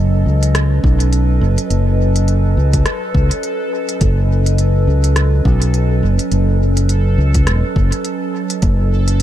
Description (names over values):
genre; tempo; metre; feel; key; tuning
ambient dub; 104 BPM; 4/4; swing 58% on 16ths; F# dorian; A4 = 439 Hz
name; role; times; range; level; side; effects
warbly tape-like pad; sustained chords; 0.0-9.2 s; F#3 to D#5; -21 LUFS; right 1 dB; chorus, built-in reverb, phaser
fingered electric bass; bass; 0.0-9.2 s; E1 to C#2; -13 LUFS; equal; none
bubbling stepped-filter texture; texture; 0.0-9.2 s; A4; -27 LUFS; right 4 dB; chorus, built-in reverb
organic electronic drum kit; drums; 0.4-9.2 s; hi-hat, rim click; -24 LUFS; equal; dub echo
electronic kick drum; drums; 0.8-8.8 s; none; -16 LUFS; equal; overdrive
room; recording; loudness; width
digital ambience; echo-heavy mix; -12 LUFS; side -12 dB against mid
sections
0.0-9.2 A section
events
none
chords
0.0 F#m